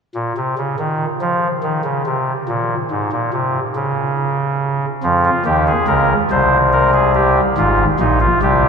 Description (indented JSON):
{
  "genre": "classical, baroque-style 3-part fugue for pipe organ",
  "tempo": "47 BPM (dotted quarters)",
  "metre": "6/8",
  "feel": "straight",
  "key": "unclear",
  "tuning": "A4 = 440 Hz",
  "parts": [
    { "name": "chamber organ, soft reed", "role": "solo", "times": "0.1-8.7 s", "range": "Ab1 to C5", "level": "-14 LUFS", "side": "equal", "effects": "none" }
  ],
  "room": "wet cathedral reverb, RT60 6.7 s",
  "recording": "minimal, uncompressed stereo recording",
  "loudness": "-14 LUFS",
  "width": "side -6 dB against mid",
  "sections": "0.0-8.7 A section",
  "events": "none",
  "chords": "0.0 N.C.; 5.0 Fm; 6.3 C5; 7.6 Fm/Ab"
}